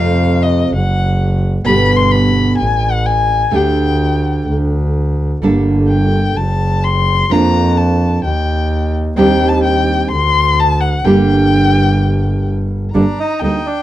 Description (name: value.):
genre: tango.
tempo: 128 BPM.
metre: 4/4.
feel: rubato.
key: G minor.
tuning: A4 = 440 Hz.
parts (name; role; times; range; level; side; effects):
warm violin; second line; 0.0-13.8 s; Eb5 to C6; -17 LUFS; left 5 dB; none.
nylon-string guitar; accompaniment; 0.0-13.6 s; B2 to A4; -14 LUFS; right 2 dB; none.
clear double bass; bass; 0.0-13.6 s; F#1 to F2; -15 LUFS; equal; none.
bandoneon; melody; 12.9-13.8 s; D4 to Eb4; -19 LUFS; right 2 dB; none.
room: moderate studio reverb, RT60 0.5 s.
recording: dark, warm production.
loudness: -11 LUFS.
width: side -13 dB against mid.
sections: 0.0-12.9 A section.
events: violin solo 0.0-12.9.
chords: 0.0 F; 0.7 N.C.; 1.7 G; 2.6 F#madd9/A (rootless); 3.5 Dsus4; 4.5 N.C.; 5.4 Gmadd9; 6.4 F#dim; 7.3 Bb/F; 8.2 Eb; 9.2 Cmadd9/Eb; 10.1 D7; 11.0 Gm; 12.9 Gmadd9.